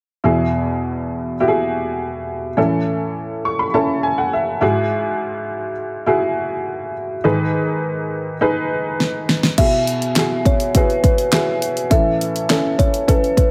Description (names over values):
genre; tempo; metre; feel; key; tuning
piano-driven pop; 103 BPM; 4/4; straight; E major; A4 = 445 Hz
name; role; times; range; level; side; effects
clear upright piano; accompaniment; 0.2-13.5 s; E2 to C#6; -21 LUFS; equal; none
pop drum kit; drums; 9.0-13.5 s; crash cymbal, handclaps, hi-hat, kick drum, snare drum; -19 LUFS; equal; none
kalimba; melody; 9.6-13.5 s; B4 to E5; -22 LUFS; equal; none
room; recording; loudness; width
moderate large studio reverb, RT60 1.4 s; none; -19 LUFS; mono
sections
0.2-9.6 A section; 9.6-13.5 B section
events
upright piano fill 3.2-4.9; drum fill 9.0-9.6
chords
0.2 Eadd9; 2.6 A; 4.6 Eadd9/G#; 7.2 G#m; 9.6 Eadd9; 11.9 A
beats
| 0.24 0.82 1.41 1.99 | 2.57 3.16 3.74 4.33 | 4.91 5.49 6.08 6.66 | 7.25 7.83 8.41 9.00 | 9.58 10.16 10.75 11.33 | 11.91 12.50 13.08